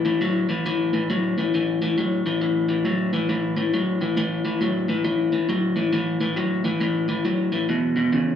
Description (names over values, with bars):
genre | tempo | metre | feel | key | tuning
blues | 136 BPM | 4/4 | swing 63% on 8ths | unclear | A4 = 440 Hz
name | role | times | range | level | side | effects
electric guitar through a small old amp | solo | 0.0-8.4 s | E2 to F#3 | -20 LUFS | left 1 dB | slapback echo, tape echo
room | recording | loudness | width
moderate club reverb, RT60 0.5 s | live gig heard through the venue's PA, club reverb | -20 LUFS | side -8 dB against mid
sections
0.7-8.4 A section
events
none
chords
0.0 A5; 7.7 E5